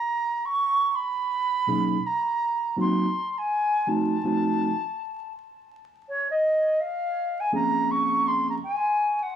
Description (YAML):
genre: hip hop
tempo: 82 BPM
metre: 4/4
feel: swing 60% on 16ths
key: unclear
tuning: A4 = 440 Hz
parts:
  - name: silver concert flute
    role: melody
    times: 0.0-9.4 s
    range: Db5 to C#6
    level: -24 LUFS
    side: right 1 dB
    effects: analog delay
  - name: mellow tine electric piano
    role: accompaniment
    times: 1.7-8.6 s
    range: B2 to G#4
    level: -25 LUFS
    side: right 1 dB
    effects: fast stereo tremolo
room: moderate studio ambience, RT60 0.5 s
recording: dry, gritty hardware recording, vinyl crackle, studio ambience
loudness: -22 LUFS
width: side -9 dB against mid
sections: 0.0-5.7 A section; 5.7-9.4 B section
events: flute solo 5.7-9.4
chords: 0.0 Bmaj13; 2.8 Cm7b5; 4.2 F7b9; 5.7 Bbm9; 8.6 N.C.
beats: 0.58 1.31 2.04 | 2.77 3.50 4.24 4.97 | 5.70 6.43 7.16 7.89 | 8.63